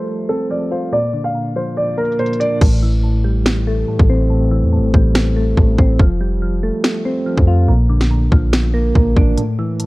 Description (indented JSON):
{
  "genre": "hip hop, trap",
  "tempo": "142 BPM",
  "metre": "4/4",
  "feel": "half-time",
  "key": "A phrygian",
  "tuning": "A4 = 440 Hz",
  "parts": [
    { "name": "warm grand piano", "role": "melody", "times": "0.0-2.6 s", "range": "A4 to F5", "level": "-20 LUFS", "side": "equal", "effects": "none" },
    { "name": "soft electric-piano-like synth keys", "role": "accompaniment", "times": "0.0-9.9 s", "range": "A2 to F4", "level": "-18 LUFS", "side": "equal", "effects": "chorus, tremolo, low-pass filter" },
    { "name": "trap drum kit", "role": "drums", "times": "0.1-9.9 s", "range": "crash cymbal, hi-hat, kick drum, snare drum", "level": "-14 LUFS", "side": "equal", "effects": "none" },
    { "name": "warm 808-style bass", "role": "bass", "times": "2.6-9.4 s", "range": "F1 to F2", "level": "-16 LUFS", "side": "equal", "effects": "none" }
  ],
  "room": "digital ambience",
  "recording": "worn, warbling old tape, cassette tape, warbly pitch drift, low-pass filter",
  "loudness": "-13 LUFS",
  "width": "side -20 dB against mid",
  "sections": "0.0-2.6 A section; 2.6-9.9 B section",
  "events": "filter sweep 0.0-2.6; kick muted 1.8-2.6; hi-hats muted 2.6-9.4; filter sweep on synth keys 2.6-9.4; break 9.4-9.9",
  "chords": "0.0 Fadd9; 0.9 Bb; 2.6 Am7; 6.0 Fadd9; 7.7 Bb",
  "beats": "0.08 0.50 | 0.93 1.35 1.77 2.19 | 2.62 3.04 3.46 3.88 | 4.30 4.73 5.15 5.57 | 6.00 6.42 6.84 7.26 | 7.68 8.11 8.53 8.95 | 9.38 9.80"
}